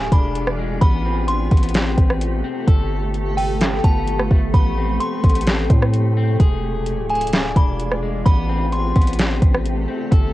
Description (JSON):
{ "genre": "hip hop, atmospheric cloud-rap", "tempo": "129 BPM", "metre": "4/4", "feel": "half-time", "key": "A minor", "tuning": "A4 = 438 Hz", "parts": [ { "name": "delicate synth tine bell", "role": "melody", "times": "0.0-9.2 s", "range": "G5 to C6", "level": "-26 LUFS", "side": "equal", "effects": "chorus, low-pass filter, cassette tape, tape echo" }, { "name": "granular cloud pad", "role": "sustained chords", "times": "0.0-10.3 s", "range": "C3 to A4", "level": "-27 LUFS", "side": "equal", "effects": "built-in reverb, sidechain pumping, cassette tape" }, { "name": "electric guitar at the edge of break-up", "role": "arpeggios", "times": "0.0-10.3 s", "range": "G#3 to A4", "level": "-28 LUFS", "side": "left 6 dB", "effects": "low-pass filter, cassette tape, tape echo" }, { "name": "long sustained 808-style bass", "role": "bass", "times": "0.0-10.3 s", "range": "D1 to A2", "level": "-22 LUFS", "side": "equal", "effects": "transformer saturation" }, { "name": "downlifter", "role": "sound effects", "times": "0.0-0.8 s", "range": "none", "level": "barely audible", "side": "none", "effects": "none" }, { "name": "wind-like tuned noise texture", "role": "texture", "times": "0.1-10.3 s", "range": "C4 to B6", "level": "-35 LUFS", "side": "right 2 dB", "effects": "built-in reverb, cassette tape" }, { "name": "smooth R&B drum kit", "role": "drums", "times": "0.1-10.2 s", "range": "hi-hat, kick drum, rim click, snare drum", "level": "-16 LUFS", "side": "equal", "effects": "none" } ], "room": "little or no reverb", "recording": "home recording on cassette", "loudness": "-16 LUFS", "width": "side -16 dB against mid", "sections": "0.0-10.3 A section", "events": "none", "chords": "0.0 E7b9; 0.8 Am9; 2.7 G9; 4.5 Am9; 6.4 E7b9; 8.3 Am9" }